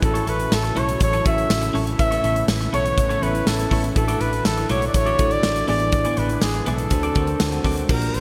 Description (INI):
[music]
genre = 1980s-style pop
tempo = 122 BPM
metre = 4/4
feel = straight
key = unclear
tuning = A4 = 440 Hz
[part]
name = warm flugelhorn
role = melody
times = 0.0-8.2 s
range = G#4 to E5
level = -26 LUFS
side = equal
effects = delay
[part]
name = bell-like tine electric piano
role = accompaniment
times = 0.0-8.2 s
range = A2 to C5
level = -29 LUFS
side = equal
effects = none
[part]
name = lush unison pad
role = sustained chords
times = 0.0-8.2 s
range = C#3 to F#4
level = -34 LUFS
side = equal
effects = chorus, phaser
[part]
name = clean electric guitar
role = riff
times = 0.0-7.8 s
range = A3 to D5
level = -32 LUFS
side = equal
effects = lush chorus
[part]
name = vintage muted fingered electric bass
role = bass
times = 0.0-8.2 s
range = A1 to D2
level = -28 LUFS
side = equal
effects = none
[part]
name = big rock drum kit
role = drums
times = 0.0-8.2 s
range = crash cymbal, hi-hat, kick drum, snare drum, tambourine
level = -26 LUFS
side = equal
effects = none
[sound]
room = moderate lush hall reverb, RT60 2.6 s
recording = bright 1980s-style digital production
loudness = -20 LUFS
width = mono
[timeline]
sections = 0.0-7.9 A section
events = none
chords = 0.0 F#m7/A; 2.0 Aadd9; 4.0 Dadd9/A; 5.7 E7/A; 6.9 D7